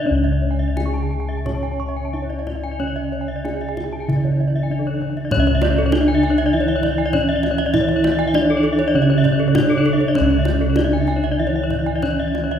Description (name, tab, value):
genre	Balinese gamelan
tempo	84-99 BPM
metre	4/4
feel	straight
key	C# pelog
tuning	A4 = 441 Hz
part	gamelan-type bronze metallophone	melody	0.0-12.6 s	C#4 to C#5	-22 LUFS	equal	none
part	gamelan-type bronze metallophone	arpeggios	0.0-12.5 s	A4-20c to C#6	-25 LUFS	left 3 dB	none
part	gamelan-type bossed gongs	bass	0.0-12.6 s	C#2 to E4-30c	-21 LUFS	left 1 dB	none
part	gamelan-type bronze metallophone	accompaniment	0.1-12.6 s	C#3 to C#4	-27 LUFS	right 2 dB	none
part	gamelan-type bronze metallophone	arpeggios	0.2-12.6 s	A4-20c to C#6	-26 LUFS	right 4 dB	none
part	kendang	percussion	0.8-12.5 s	none	-28 LUFS	equal	none
room	wet concert hall reverb, RT60 2.3 s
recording	heard from further back in the room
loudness	-16 LUFS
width	side -8 dB against mid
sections	0.0-5.3 A section; 5.3-12.6 B section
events	none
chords	none